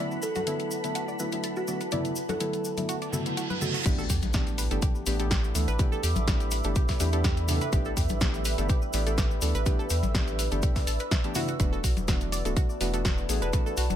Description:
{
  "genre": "deep house",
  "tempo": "124 BPM",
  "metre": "4/4",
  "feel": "swing 54% on 16ths",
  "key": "unclear",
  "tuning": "A4 = 440 Hz",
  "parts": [
    { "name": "deep dark ambient pad", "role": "sustained chords", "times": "0.0-14.0 s", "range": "E4 to D6", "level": "-38 LUFS", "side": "right 1 dB", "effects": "chorus, built-in reverb, sidechain pumping" },
    { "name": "analog pluck", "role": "arpeggios", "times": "0.0-13.8 s", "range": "F#4 to A5", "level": "-38 LUFS", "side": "right 4 dB", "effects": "chorus, phaser, vintage 12-bit sampler grit, sidechain pumping, ping-pong delay" },
    { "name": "deep mellow chord stab", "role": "stabs", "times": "0.0-13.7 s", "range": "D3 to A4", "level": "-33 LUFS", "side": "left 1 dB", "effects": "chorus, sidechain pumping, ping-pong delay" },
    { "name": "granular cloud pad", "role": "texture", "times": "0.0-14.0 s", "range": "E4 to E6", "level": "-38 LUFS", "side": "right 1 dB", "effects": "built-in reverb, sidechain pumping" },
    { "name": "string machine, violins", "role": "texture", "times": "0.0-3.9 s", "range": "B5", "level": "-43 LUFS", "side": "equal", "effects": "ensemble chorus, sidechain pumping" },
    { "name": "cabasa", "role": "percussion", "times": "0.1-14.0 s", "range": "none", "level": "-40 LUFS", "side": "left 1 dB", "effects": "none" },
    { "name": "kalimba", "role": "melody", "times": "0.2-2.5 s", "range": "F#4 to A4", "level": "-35 LUFS", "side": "equal", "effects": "ping-pong delay" },
    { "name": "house drum kit", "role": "drums", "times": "0.4-14.0 s", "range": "crash cymbal, hi-hat, snare drum", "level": "-33 LUFS", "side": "left 1 dB", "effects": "none" },
    { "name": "congas", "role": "percussion", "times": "0.4-14.0 s", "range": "none", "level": "-36 LUFS", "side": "left 4 dB", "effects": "sidechain pumping on perc" },
    { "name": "reverse cymbal and impact", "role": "sound effects", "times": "3.1-5.8 s", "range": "none", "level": "-36 LUFS", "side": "right 2 dB", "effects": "none" },
    { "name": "round analog bass", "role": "bass", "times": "3.9-14.0 s", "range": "D1 to E2", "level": "-29 LUFS", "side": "equal", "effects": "sidechain pumping" },
    { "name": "electronic kick drum", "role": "drums", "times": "3.9-13.6 s", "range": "none", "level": "-26 LUFS", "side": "equal", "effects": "none" }
  ],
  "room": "light reverb",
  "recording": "none",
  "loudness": "-25 LUFS",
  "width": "side -10 dB against mid",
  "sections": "0.0-3.9 A section; 3.9-14.0 B section",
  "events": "reverse cymbal 3.1-3.9; drop 3.9-14.0; impact 3.9-5.8",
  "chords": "0.0 E9sus4; 3.9 A9sus4; 11.4 E9sus4"
}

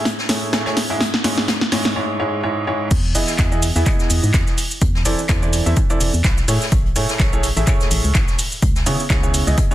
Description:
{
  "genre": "piano house",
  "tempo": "126 BPM",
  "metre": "4/4",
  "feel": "swing 55% on 16ths",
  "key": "E major",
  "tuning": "A4 = 440 Hz",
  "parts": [
    { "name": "bright baby grand piano", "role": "riff", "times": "0.0-9.7 s", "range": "G#2 to E5", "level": "-22 LUFS", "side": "right 1 dB", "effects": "vintage 12-bit sampler grit, sidechain pumping, tape echo" },
    { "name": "punchy analog drum machine", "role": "drums", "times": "0.1-9.7 s", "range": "cabasa, crash cymbal, handclaps, hi-hat, snare drum", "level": "-22 LUFS", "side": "equal", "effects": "none" },
    { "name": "vintage brush drum kit", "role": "drums", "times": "0.1-9.7 s", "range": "hi-hat, snare drum", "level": "-30 LUFS", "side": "left 2 dB", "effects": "sidechain pumping on hats, high-pass filter on hats, soft clipping on snare, high-pass filter on snare, high-pass filter on room" },
    { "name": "organ-like FM bass", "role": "bass", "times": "2.9-9.6 s", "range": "E1 to C#3", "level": "-20 LUFS", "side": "equal", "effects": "sidechain pumping" },
    { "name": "electronic kick drum", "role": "drums", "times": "2.9-9.7 s", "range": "none", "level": "-18 LUFS", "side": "equal", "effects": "none" }
  ],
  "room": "light reverb",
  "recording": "dense, heavily limited modern master",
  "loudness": "-16 LUFS",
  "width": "side -14 dB against mid",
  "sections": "0.0-2.9 A section; 2.9-9.7 B section",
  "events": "build-up 0.0-2.9; drum fill 0.0-2.0; break 2.0-2.9; drop 2.9-9.7",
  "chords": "0.0 Amaj7; 0.8 C#m; 2.9 Emaj7; 4.6 C69/E; 6.5 Amaj7; 8.4 C#m7"
}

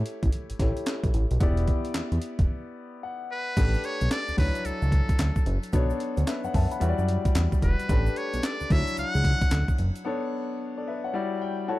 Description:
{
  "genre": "R&B, new jack swing",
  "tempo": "111 BPM",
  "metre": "4/4",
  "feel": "swing 63% on 16ths",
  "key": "unclear",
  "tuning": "A4 = 440 Hz",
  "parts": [
    { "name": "warm concert grand piano", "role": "accompaniment", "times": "0.0-11.8 s", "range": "F#3 to B5", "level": "-31 LUFS", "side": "left 3 dB", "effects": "none" },
    { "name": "fat analog bass", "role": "bass", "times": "0.0-9.9 s", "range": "E1 to F#2", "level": "-25 LUFS", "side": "equal", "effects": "none" },
    { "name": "breakbeat sampler-style drum kit", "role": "drums", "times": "0.1-10.0 s", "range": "crash cymbal, handclaps, hi-hat, kick drum, snare drum", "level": "-26 LUFS", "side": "equal", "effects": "none" },
    { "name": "trumpet with metal mute", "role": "melody", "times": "3.3-9.8 s", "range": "A4 to F#5", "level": "-32 LUFS", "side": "equal", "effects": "digital delay" },
    { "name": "tube shaker", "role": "percussion", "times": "3.6-10.0 s", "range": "none", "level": "-52 LUFS", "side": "right 11 dB", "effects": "none" }
  ],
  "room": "small room ambience",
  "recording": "dark, warm production",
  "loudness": "-24 LUFS",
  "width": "side -17 dB against mid",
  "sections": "0.0-3.6 A section; 3.6-11.8 B section",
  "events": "break 2.5-3.6, 10.1-11.8; grand piano fill 2.8-3.6, 11.1-11.8",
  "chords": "0.0 A7; 1.4 Em7; 3.6 A9sus4; 4.4 Dmaj9; 5.7 Bm9; 6.8 Em9; 7.9 A9sus4; 8.7 Dmaj9; 10.1 Bm9; 11.1 Em9"
}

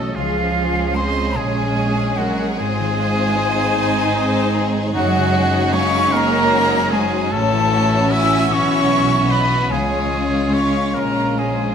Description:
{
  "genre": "cinematic, emotional film score for orchestra",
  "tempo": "50 BPM (dotted quarters)",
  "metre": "6/8",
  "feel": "rubato",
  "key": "unclear",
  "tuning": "A4 = 441 Hz",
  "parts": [
    { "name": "rich studio violin section", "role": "melody", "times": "0.0-11.7 s", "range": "Ab4 to Ab5", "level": "-28 LUFS", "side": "left 5 dB", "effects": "none" },
    { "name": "bright oboe", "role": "second line", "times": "0.0-11.7 s", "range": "F4 to E5", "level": "-26 LUFS", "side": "right 2 dB", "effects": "none" },
    { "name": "clear studio violin section", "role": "second line", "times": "0.0-11.7 s", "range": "C#4 to C5", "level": "-27 LUFS", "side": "left 4 dB", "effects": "none" },
    { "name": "rich studio viola section", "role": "accompaniment", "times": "0.0-11.7 s", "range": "Db3 to Eb5", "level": "-25 LUFS", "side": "right 2 dB", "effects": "none" },
    { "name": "mellow French horn section", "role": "sustained chords", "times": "0.0-11.7 s", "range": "Db3 to Db4", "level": "-26 LUFS", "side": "left 4 dB", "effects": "none" },
    { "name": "concert harp", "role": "arpeggios", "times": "0.0-11.7 s", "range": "Gb2 to Db6", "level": "-27 LUFS", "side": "left 6 dB", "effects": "none" },
    { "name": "clear studio double bass section", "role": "bass", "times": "0.0-11.7 s", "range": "Gb1 to Db2", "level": "-24 LUFS", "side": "right 2 dB", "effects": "none" },
    { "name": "rich studio cello section", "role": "bass", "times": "0.0-11.7 s", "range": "F3 to E4", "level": "-24 LUFS", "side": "right 3 dB", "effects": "none" },
    { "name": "bright small flute group", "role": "second line", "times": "0.2-11.7 s", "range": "F5 to E6", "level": "-21 LUFS", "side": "left 1 dB", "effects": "none" }
  ],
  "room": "moderate scoring stage reverb, RT60 1.8 s",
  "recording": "none",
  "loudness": "-15 LUFS",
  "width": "side -7 dB against mid",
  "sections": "0.0-11.7 A section",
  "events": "none",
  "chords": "0.2 Db; 2.6 Ab; 5.0 Gbsus2; 7.3 A; 9.7 Db"
}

